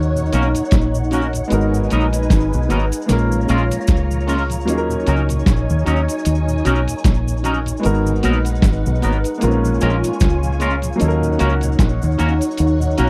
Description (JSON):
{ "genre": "lovers rock reggae", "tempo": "76 BPM", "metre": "4/4", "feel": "swing 57% on 16ths", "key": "Eb minor", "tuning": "A4 = 440 Hz", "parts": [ { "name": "soft string machine", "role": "second line", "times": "0.0-13.1 s", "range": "Eb4 to Bb5", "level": "-26 LUFS", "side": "equal", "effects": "phaser, ensemble chorus" }, { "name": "warm grand piano", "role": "accompaniment", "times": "0.0-13.1 s", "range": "Gb3 to Bb4", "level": "-26 LUFS", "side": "equal", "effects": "slapback echo" }, { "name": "deep dub fingered electric bass", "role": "bass", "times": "0.0-13.1 s", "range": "Ab1 to Eb2", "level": "-21 LUFS", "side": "equal", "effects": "none" }, { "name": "mellow tonewheel organ", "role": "accompaniment", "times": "0.2-13.1 s", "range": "Eb2 to Ab4", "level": "-27 LUFS", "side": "equal", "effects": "slow rotary speaker" }, { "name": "cabasa", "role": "percussion", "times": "0.2-13.1 s", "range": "none", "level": "-38 LUFS", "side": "equal", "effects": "slapback echo" }, { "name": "twangy electric guitar", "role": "stabs", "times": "0.3-13.1 s", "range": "Gb3 to Bb4", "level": "-23 LUFS", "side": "equal", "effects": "analog chorus" }, { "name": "lo-fi sampler-style drum kit", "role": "drums", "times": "0.3-13.1 s", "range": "hi-hat, kick drum, snare drum", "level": "-19 LUFS", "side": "equal", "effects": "none" } ], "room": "little or no reverb", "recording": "dry, close 1970s-style studio recording", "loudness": "-17 LUFS", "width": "mono", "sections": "0.0-13.1 A section", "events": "none", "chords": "0.0 Ebm7; 1.5 Abm9; 3.1 Bbm7; 4.7 Ebm7; 7.8 Abm9; 9.4 Bbm7; 11.0 Ebm7" }